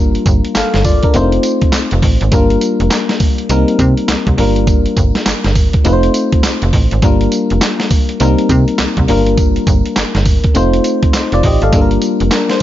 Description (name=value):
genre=R&B, new jack swing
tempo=102 BPM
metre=4/4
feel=swing 63% on 16ths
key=G minor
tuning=A4 = 439 Hz
part: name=FM electric piano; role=accompaniment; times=0.0-12.6 s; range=G3 to F5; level=-14 LUFS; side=left 2 dB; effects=chorus
part: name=slap-like FM bass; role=bass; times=0.0-12.3 s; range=F1 to C3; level=-14 LUFS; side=right 1 dB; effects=none
part: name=dusty soul sampler-style drum kit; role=drums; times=0.1-12.6 s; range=handclaps, hi-hat, kick drum, snare drum, tambourine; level=-14 LUFS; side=right 1 dB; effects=none
room=little or no reverb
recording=nothing above 7.5 kHz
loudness=-10 LUFS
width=side -13 dB against mid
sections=0.0-12.6 A section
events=none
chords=0.0 Gm7; 1.1 F7; 2.3 Gm7; 3.5 Cm7; 4.4 Gm7; 5.8 F7; 7.0 Gm7; 8.2 Cm7; 9.1 Gm7; 10.6 F7; 11.7 Gm7